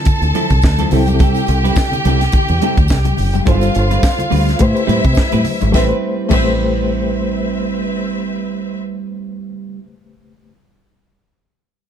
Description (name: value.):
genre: disco.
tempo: 106 BPM.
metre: 4/4.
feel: swing 56% on 16ths.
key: A minor.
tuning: A4 = 441 Hz.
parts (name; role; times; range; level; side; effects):
clear symphonic string section; second line; 0.0-8.8 s; C4 to A5; -21 LUFS; equal; none.
reed electric piano; accompaniment; 0.0-10.5 s; C3 to C5; -22 LUFS; left 3 dB; tremolo.
clean electric guitar; accompaniment; 0.1-9.8 s; F3 to B4; -22 LUFS; right 5 dB; none.
tight funk drum kit; drums; 0.1-6.5 s; crash cymbal, hi-hat, kick drum, snare drum; -16 LUFS; equal; none.
congas; percussion; 0.1-6.5 s; none; -25 LUFS; left 7 dB; none.
tambourine; percussion; 0.1-6.5 s; none; -36 LUFS; right 5 dB; none.
fingered electric bass; bass; 0.2-9.5 s; F#1 to C3; -16 LUFS; equal; none.
room: little or no reverb.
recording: dark, warm production.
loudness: -13 LUFS.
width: side -9 dB against mid.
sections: 0.0-5.7 A section; 5.7-8.0 B section.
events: none.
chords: 0.0 Dm9; 0.9 C6; 3.5 G9sus4; 4.6 Am9.